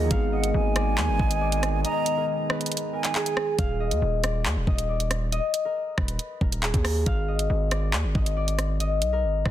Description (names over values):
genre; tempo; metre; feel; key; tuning
hip hop, drill; 138 BPM; 4/4; half-time; unclear; A4 = 440 Hz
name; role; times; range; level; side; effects
concert harp; melody; 0.0-9.5 s; Ab4 to F5; -29 LUFS; left 2 dB; none
mellow hollow silver concert flute; second line; 0.0-3.5 s; Gb5 to Bb5; -31 LUFS; right 6 dB; digital delay
soft electric-piano-like synth keys; accompaniment; 0.0-3.6 s; Eb3 to Bb4; -34 LUFS; right 2 dB; chorus
deep dark ambient pad; sustained chords; 0.0-3.6 s; Eb3 to Ab4; -34 LUFS; right 1 dB; chorus, built-in reverb
distorted 808-style bass; bass; 0.0-9.5 s; Eb1 to Eb2; -26 LUFS; equal; distortion
drill drum kit; drums; 0.1-9.5 s; handclaps, hi-hat, kick drum, rim click; -27 LUFS; equal; none
room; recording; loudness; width
digital ambience; dense, heavily limited modern master; -23 LUFS; side -12 dB against mid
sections
0.0-3.6 A section; 3.6-9.5 B section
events
break 1.8-3.6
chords
0.1 Abm; 3.6 Ebsus24; 7.1 Ab5